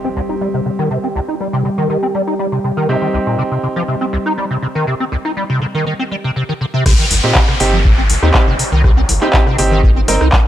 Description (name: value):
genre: acid house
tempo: 121 BPM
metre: 4/4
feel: straight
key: C minor pentatonic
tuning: A4 = 440 Hz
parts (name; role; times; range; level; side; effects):
- lush unison pad; sustained chords; 0.0-6.4 s; G3 to G4; -23 LUFS; equal; chorus, sidechain pumping
- liquid acid bass; riff; 0.0-10.4 s; C2 to Eb4; -18 LUFS; equal; overdrive, ensemble chorus, sidechain pumping, analog delay
- bright grand piano; stabs; 0.0-10.2 s; C4 to Bb4; -21 LUFS; right 3 dB; analog delay
- impact and downlifter; sound effects; 0.0-0.9, 6.9-10.5 s; none; -22 LUFS; equal; none
- warm sub bass; bass; 6.9-10.3 s; G1 to Eb2; -15 LUFS; equal; sidechain pumping
- electro analog drum machine; drums; 6.9-10.4 s; crash cymbal, handclaps, hi-hat, rim click; -17 LUFS; left 1 dB; low-pass filter on snare, low-pass filter on hats, low-pass filter on cymbals, low-pass filter on room
- electronic kick drum; drums; 6.9-10.4 s; none; -13 LUFS; equal; none
room: little or no reverb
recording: dry, gritty hardware recording, transformer saturation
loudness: -13 LUFS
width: side -12 dB against mid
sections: 0.0-6.9 A section; 6.9-10.5 B section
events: impact 0.0-0.9; drop 6.9-10.5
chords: 0.0 Cm